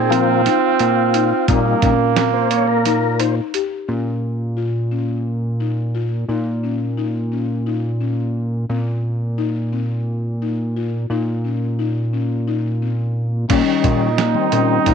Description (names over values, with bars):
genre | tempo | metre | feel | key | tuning
progressive instrumental, band music in an uneven meter | 175 BPM (eighths) | 7/8 | straight | Bb dorian | A4 = 440 Hz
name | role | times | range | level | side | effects
breathy flugelhorn | second line | 0.0-3.5, 13.5-14.9 s | Bb3 to Eb4 | -18 LUFS | right 12 dB | slapback echo
tonewheel organ | accompaniment | 0.0-3.4, 13.5-14.9 s | Eb3 to Db5 | -20 LUFS | left 12 dB | chorus vibrato, stopped rotary speaker
fat analog bass | bass | 0.0-14.9 s | Bb2 | -20 LUFS | right 1 dB | none
buzzing marimba with soft mallets | arpeggios | 0.1-14.9 s | Bb3 to G4 | -24 LUFS | left 10 dB | slapback echo
lo-fi sampler-style drum kit | drums | 0.1-3.7, 13.5-14.9 s | crash cymbal, hi-hat, kick drum, snare drum | -22 LUFS | right 4 dB | none
room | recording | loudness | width
light reverb | 1960s-style stereo with parts hard left and right | -17 LUFS | side -7 dB against mid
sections
0.0-3.9 A section; 3.9-13.5 B section; 13.5-14.9 C section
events
tonewheel organ solo 0.0-3.9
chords
0.0 Bbsus4; 1.5 Cm7/Bb; 3.9 Bbm; 6.3 Eb5/Bb; 8.7 Bbsus24; 11.1 Cm7/Bb; 13.5 Eb7/Bb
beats
0.12 0.46 0.80 1.14 | 1.49 1.83 2.17 2.51 2.85 3.20 3.54 | 3.88 4.22 4.57 4.91 5.25 5.60 5.94 | 6.29 6.63 6.97 7.32 7.66 8.01 8.35 | 8.70 9.04 9.38 9.73 10.07 10.41 10.76 | 11.10 11.44 11.79 12.13 12.47 12.81 13.15 | 13.50 13.84 14.18 14.52 14.86